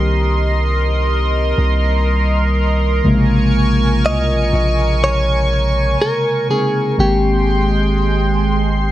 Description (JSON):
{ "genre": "R&B", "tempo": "61 BPM", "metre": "4/4", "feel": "swing 58% on 16ths", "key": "Bb dorian", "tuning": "A4 = 440 Hz", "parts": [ { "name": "direct-recorded clean electric guitar", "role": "melody", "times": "0.0-8.9 s", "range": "G4 to Eb5", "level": "-20 LUFS", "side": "equal", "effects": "ping-pong delay" }, { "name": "mellow tine electric piano", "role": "accompaniment", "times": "0.0-8.9 s", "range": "C3 to G4", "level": "-20 LUFS", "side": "left 1 dB", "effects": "phaser" }, { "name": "chorused pulse-width pad", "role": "sustained chords", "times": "0.0-8.9 s", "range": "Ab3 to Db6", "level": "-20 LUFS", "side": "right 2 dB", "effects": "none" }, { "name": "long sustained 808-style bass", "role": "bass", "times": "0.0-8.9 s", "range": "Ab1 to C2", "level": "-16 LUFS", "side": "equal", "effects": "none" } ], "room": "little or no reverb", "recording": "none", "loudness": "-13 LUFS", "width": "side -14 dB against mid", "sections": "0.0-8.9 A section", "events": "none", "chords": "0.0 Cm7; 3.0 Bbm7; 7.0 Abmaj7", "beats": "0.10 1.08 2.07 | 3.05 4.03 5.02 6.00 | 6.99 7.97" }